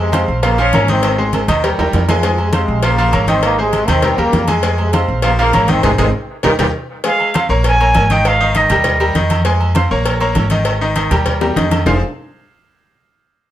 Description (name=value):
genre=latin, salsa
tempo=199 BPM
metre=4/4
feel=straight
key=F minor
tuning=A4 = 441 Hz
part: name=warm trombone section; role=melody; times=0.0-6.7 s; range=Ab2 to Db4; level=-18 LUFS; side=equal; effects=none
part: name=bright grand piano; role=accompaniment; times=0.0-12.0 s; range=Eb3 to Ab5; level=-18 LUFS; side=equal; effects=none
part: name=upright bass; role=bass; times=0.0-12.0 s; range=F1 to F2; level=-17 LUFS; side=equal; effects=none
part: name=agogo bells and timbales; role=percussion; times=0.1-11.9 s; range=none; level=-24 LUFS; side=right 5 dB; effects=none
part: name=congas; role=percussion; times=0.1-11.9 s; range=none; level=-21 LUFS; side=left 1 dB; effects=none
part: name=cowbell and bongos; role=percussion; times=0.1-11.9 s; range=none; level=-23 LUFS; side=left 3 dB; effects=none
part: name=bright reedy jazz flute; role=melody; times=7.1-9.2 s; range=Eb5 to Ab5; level=-14 LUFS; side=right 1 dB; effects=none
room=moderate studio reverb, RT60 0.7 s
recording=none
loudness=-12 LUFS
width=side -12 dB against mid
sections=0.0-7.0 A section; 7.0-11.9 B section; 11.9-13.1 C section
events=drum fill 1.0-2.2, 5.8-7.0, 11.4-11.9; band accent 5.8-7.0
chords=0.4 Bbm; 1.0 Ab; 1.6 Eb; 2.2 Fm; 2.8 Bbm; 3.4 Ab; 4.0 Eb; 4.6 Fm; 5.2 Bbm; 5.8 Ab; 6.4 Eb; 7.0 Fm; 7.6 Bbm; 8.2 Ab5; 8.9 Eb; 9.5 Fm; 10.1 Bbm; 10.7 Ab5; 11.3 Eb; 11.9 F5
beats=0.14 0.43 0.73 | 1.03 1.33 1.63 1.93 | 2.23 2.53 2.83 3.13 | 3.44 3.73 4.04 4.34 | 4.64 4.94 5.24 5.54 | 5.84 6.14 6.44 6.74 | 7.04 7.35 7.65 7.95 | 8.25 8.55 8.85 9.15 | 9.45 9.76 10.06 10.36 | 10.66 10.96 11.26 11.56 | 11.86